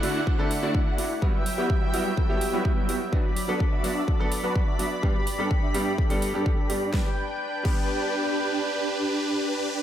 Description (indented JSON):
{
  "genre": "EDM, festival progressive house",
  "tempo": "126 BPM",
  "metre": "4/4",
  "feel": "straight",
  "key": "G major",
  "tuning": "A4 = 440 Hz",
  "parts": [
    { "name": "bright baby grand piano", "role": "accompaniment", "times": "0.0-9.8 s", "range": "G2 to A4", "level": "-31 LUFS", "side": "equal", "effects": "sidechain pumping, tape echo" },
    { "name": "lush unison pad", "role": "sustained chords", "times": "0.0-9.8 s", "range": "F#3 to B5", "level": "-31 LUFS", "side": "equal", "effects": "chorus, sidechain pumping" },
    { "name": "supersaw chords", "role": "riff", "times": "0.0-9.8 s", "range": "G3 to F#5", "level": "-29 LUFS", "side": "right 1 dB", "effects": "phaser, sidechain pumping, low-pass filter, tape echo" },
    { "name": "big-room dance drum kit", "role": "drums", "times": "0.0-7.8 s", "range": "crash cymbal, hi-hat, snare drum", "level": "-36 LUFS", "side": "right 2 dB", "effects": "none" },
    { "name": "electronic kick drum", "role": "drums", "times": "0.3-7.8 s", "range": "none", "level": "-25 LUFS", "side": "equal", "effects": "none" }
  ],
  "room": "moderate lush hall reverb, RT60 1.6 s, digital ambience",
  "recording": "dreamy mix soaked in reverb",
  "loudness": "-23 LUFS",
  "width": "side -11 dB against mid",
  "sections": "0.0-6.9 A section; 6.9-9.8 B section",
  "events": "filter sweep on supersaw synth 0.0-6.9",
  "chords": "0.0 Dadd9; 1.2 Emadd9; 3.1 Bm/F#; 5.0 G"
}